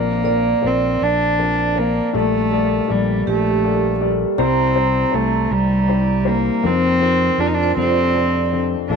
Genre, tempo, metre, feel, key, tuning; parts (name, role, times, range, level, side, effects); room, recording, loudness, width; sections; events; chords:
acoustic folk-pop ballad; 53 BPM (dotted quarters); 6/8; straight; Bb major; A4 = 439 Hz
warm cello; melody; 0.0-9.0 s; G3 to Eb4; -19 LUFS; right 1 dB; tape echo
warm grand piano; accompaniment; 0.0-9.0 s; F1 to D5; -22 LUFS; left 13 dB
fingered electric bass; bass; 0.0-9.0 s; Bb1 to F2; -22 LUFS; right 1 dB
vibraphone with medium hard mallets; arpeggios; 0.2-8.5 s; F4 to Bb5; -23 LUFS; right 13 dB
light reverb, studio reverb; 1960s-style stereo with parts hard left and right; -15 LUFS; side -5 dB against mid
0.0-9.0 A section
0.0 Bbadd9; 2.1 Gmadd9/Bb; 4.4 C; 6.6 F7sus4; 7.8 F6